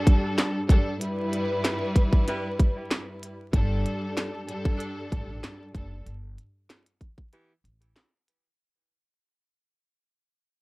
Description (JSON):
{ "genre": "hip hop, boom-bap hip-hop", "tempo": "95 BPM", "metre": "4/4", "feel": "swing 54% on 16ths", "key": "E minor", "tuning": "A4 = 438 Hz", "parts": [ { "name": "warm studio string section", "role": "accompaniment", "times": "0.0-6.0 s", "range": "G2 to B4", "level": "-30 LUFS", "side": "equal", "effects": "cassette tape, high-pass filter, low-pass filter" }, { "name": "glitchy drum kit", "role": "drums", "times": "0.1-8.4 s", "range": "handclaps, hi-hat, kick drum, snare drum", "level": "-22 LUFS", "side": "equal", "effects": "none" }, { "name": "bright saxophone section", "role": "stabs", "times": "2.3-7.5 s", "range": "E3 to B4", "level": "-38 LUFS", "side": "equal", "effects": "high-pass filter, low-pass filter, analog delay" }, { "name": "upright bass", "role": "bass", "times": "3.5-7.9 s", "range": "F#1 to A1", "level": "-32 LUFS", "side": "equal", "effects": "none" } ], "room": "little or no reverb", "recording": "dry, gritty hardware recording, vinyl crackle", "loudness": "-24 LUFS", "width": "side -24 dB against mid", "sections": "0.0-8.6 A section", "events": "break 0.0-3.5, 6.1-8.6; fade-out 0.0-8.6", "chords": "0.0 Gsus2; 1.0 Em/G; 3.5 Gsus2; 6.1 Em/G" }